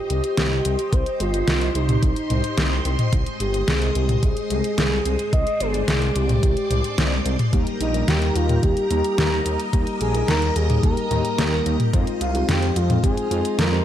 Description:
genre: synthwave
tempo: 109 BPM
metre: 4/4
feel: straight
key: unclear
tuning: A4 = 441 Hz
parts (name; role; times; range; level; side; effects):
- expressive synth lead; melody; 0.0-13.8 s; Eb4 to Eb5; -25 LUFS; equal; chorus, digital delay
- string machine, full ensemble; sustained chords; 0.0-13.8 s; Ab3 to C6; -29 LUFS; equal; phaser, ensemble chorus, vintage 12-bit sampler grit, sidechain pumping
- wide detuned saw bass; bass; 0.1-13.8 s; G1 to F2; -23 LUFS; equal; chorus
- pop drum kit; drums; 0.1-13.7 s; hi-hat, snare drum, toms; -24 LUFS; equal; overdrive
- electronic kick drum; drums; 0.9-13.1 s; none; -20 LUFS; equal; overdrive
- mellow FM electric piano; stabs; 7.5-13.8 s; G3 to Bb4; -27 LUFS; left 2 dB; chorus
room: light reverb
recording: dark, warm production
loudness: -18 LUFS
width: side -11 dB against mid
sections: 0.0-13.8 A section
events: none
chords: 0.0 Cm; 3.1 Ab; 7.5 Eb; 11.9 Fm7

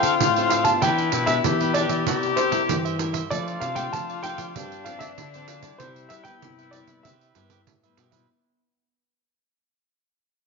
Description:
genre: samba and choro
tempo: 96 BPM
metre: 4/4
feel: straight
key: C major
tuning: A4 = 435 Hz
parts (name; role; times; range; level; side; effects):
- warm baby grand piano; melody; 0.0-7.9 s; C5 to A5; -27 LUFS; equal; none
- warm tenor saxophone; second line; 0.0-7.9 s; D4 to G4; -26 LUFS; left 7 dB; none
- cavaquinho; accompaniment; 0.0-8.3 s; D4 to F5; -32 LUFS; right 11 dB; none
- nylon-string guitar; accompaniment; 0.0-8.3 s; G2 to A4; -32 LUFS; left 9 dB; none
- pandeiro; percussion; 0.0-8.3 s; none; -28 LUFS; right 12 dB; none
- nylon-string guitar; bass; 0.2-8.3 s; G2 to G3; -31 LUFS; equal; none
room: wet echo chamber reverb, RT60 1.7 s, small room ambience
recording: 1960s-style stereo with parts hard left and right, nothing above 7.5 kHz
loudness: -20 LUFS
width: side -4 dB against mid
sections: 0.0-8.3 A section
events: fade-out 0.0-8.3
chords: 0.0 Dm7; 0.8 Em7; 2.1 C7; 3.3 F69; 4.6 G7sus4; 5.8 Cmaj7

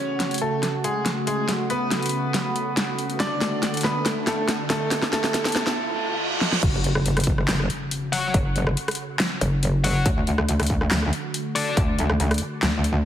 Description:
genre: heavy wobble dubstep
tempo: 140 BPM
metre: 4/4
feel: half-time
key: F# minor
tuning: A4 = 440 Hz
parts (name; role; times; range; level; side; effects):
- bright grand piano; melody; 0.0-6.5 s; G#3 to D5; -27 LUFS; equal; dub echo
- lush unison pad; sustained chords; 0.0-13.1 s; C#3 to F#4; -30 LUFS; right 1 dB; chorus, sidechain pumping
- riser, reverse cymbal and impact; sound effects; 0.0-8.3 s; none; -32 LUFS; right 1 dB; none
- dubstep drum kit; drums; 0.2-12.9 s; crash cymbal, handclaps, hi-hat, rim click, snare drum; -26 LUFS; equal; small room ambience
- metallic wobble bass; bass; 6.6-13.1 s; F#1 to D2; -22 LUFS; equal; chorus, overdrive
- electronic kick drum; drums; 6.6-11.9 s; none; -23 LUFS; equal; small room ambience
- tight distorted guitar; stabs; 8.1-11.8 s; D4 to F#5; -29 LUFS; left 3 dB; distortion, dub echo
room: moderate lush hall reverb, RT60 1.6 s, digital ambience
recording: heavily compressed radio sound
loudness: -21 LUFS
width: side -10 dB against mid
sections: 0.0-6.6 A section; 6.6-13.1 B section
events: build-up 0.0-6.6; drum fill 0.0-5.8, 6.4; riser 0.0-6.6; reverse cymbal 5.8-6.6; drop 6.6-13.1; impact 6.6-8.3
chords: 0.0 F#m; 3.2 D; 6.6 F#m; 10.1 D

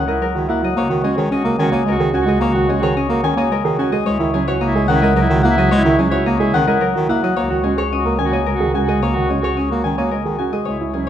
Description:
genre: classical, minimalist pattern music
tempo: 109 BPM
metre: 3/4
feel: straight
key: unclear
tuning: A4 = 439 Hz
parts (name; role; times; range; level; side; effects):
- concert harp; melody; 0.0-11.1 s; G#4 to G#5; -21 LUFS; left 7 dB; none
- mellow soprano saxophone; second line; 0.0-11.1 s; E4 to F#4; -24 LUFS; equal; none
- warm bass clarinet; accompaniment; 0.0-11.1 s; D#3 to C#4; -20 LUFS; equal; none
- dark baby grand piano; arpeggios; 0.0-11.1 s; C#4 to C#5; -21 LUFS; right 4 dB; none
- rich symphonic double bass section; bass; 0.0-11.1 s; C#2; -22 LUFS; right 2 dB; none
room: moderate scoring stage reverb, RT60 2.0 s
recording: close, detailed microphones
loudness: -15 LUFS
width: side -10 dB against mid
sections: 0.0-11.1 A section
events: none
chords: 0.0 C#m69; 0.8 D#m7/C#; 4.1 C#m69; 7.4 D#m7/C#

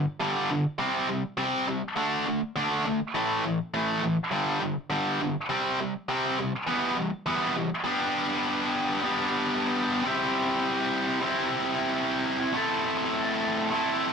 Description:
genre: punk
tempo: 204 BPM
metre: 4/4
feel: straight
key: unclear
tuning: A4 = 440 Hz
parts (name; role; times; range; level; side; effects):
- tight distorted guitar; solo; 0.0-14.1 s; G2 to A4; -25 LUFS; equal; distortion
room: moderate studio reverb, RT60 0.6 s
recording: rough rehearsal-room recording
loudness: -25 LUFS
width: side -6 dB against mid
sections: 0.0-7.9 A section; 7.9-14.1 B section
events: none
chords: 0.0 G5; 0.8 C5; 2.0 D5; 3.2 A5; 4.2 G5; 5.5 C5; 6.7 Em; 7.9 G; 10.1 C/G; 12.5 Am

